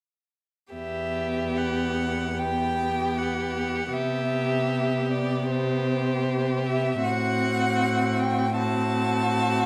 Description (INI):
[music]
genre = classical, slow romantic movement for string quartet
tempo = 78 BPM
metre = 4/4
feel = rubato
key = E minor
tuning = A4 = 440 Hz
[part]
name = rich violin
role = melody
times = 0.7-9.7 s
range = C5 to A5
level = -31 LUFS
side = equal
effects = none
[part]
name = rich violin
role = second line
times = 0.7-9.7 s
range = F#4 to G4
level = -32 LUFS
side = equal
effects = none
[part]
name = rich viola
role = accompaniment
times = 0.7-9.7 s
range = B3 to C4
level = -32 LUFS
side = equal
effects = none
[part]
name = rich cello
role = bass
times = 0.7-9.7 s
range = E2 to C3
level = -31 LUFS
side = equal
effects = none
[sound]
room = moderate recital hall reverb, RT60 1.5 s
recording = close, detailed microphones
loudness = -26 LUFS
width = mono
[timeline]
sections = 0.7-9.7 A section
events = none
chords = 0.7 Em; 3.9 Cmaj7; 7.0 F#dim/A